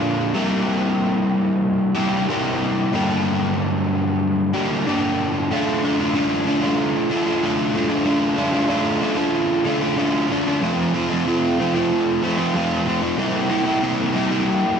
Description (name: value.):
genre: rock.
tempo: 94 BPM.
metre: 4/4.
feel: straight.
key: unclear.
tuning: A4 = 441 Hz.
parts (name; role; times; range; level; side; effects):
overdriven semi-hollow guitar; solo; 0.0-14.8 s; F2 to G4; -18 LUFS; equal; wide subtle chorus, slapback echo.
room: moderate plate reverb, RT60 2.8 s.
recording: none.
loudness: -18 LUFS.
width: side -7 dB against mid.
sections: 0.0-5.5 A section; 5.5-14.8 A section.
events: none.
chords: 0.3 C5; 2.9 Gm; 5.5 Dm; 10.6 F; 13.2 C7.